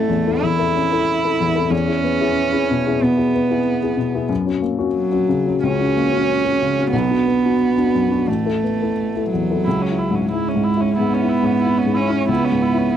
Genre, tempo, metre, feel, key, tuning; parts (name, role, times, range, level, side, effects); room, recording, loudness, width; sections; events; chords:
neoclassical piano and strings; 91 BPM; 4/4; rubato; A4 = 440 Hz
dark cello; second line; 0.0-13.0 s; F#3 to E4; -19 LUFS; right 6 dB
dark baby grand piano; accompaniment; 0.0-13.0 s; A1 to A4; -19 LUFS; left 5 dB
dark viola; accompaniment; 9.6-13.0 s; C#4 to E4; -25 LUFS; right 3 dB
small room ambience; dry, close 1970s-style studio recording; -16 LUFS; side -10 dB against mid
0.0-9.7 A section; 9.7-13.0 B section
0.0 A; 1.7 E; 4.3 F#; 6.9 Bm; 8.3 Asus2; 9.7 C#m7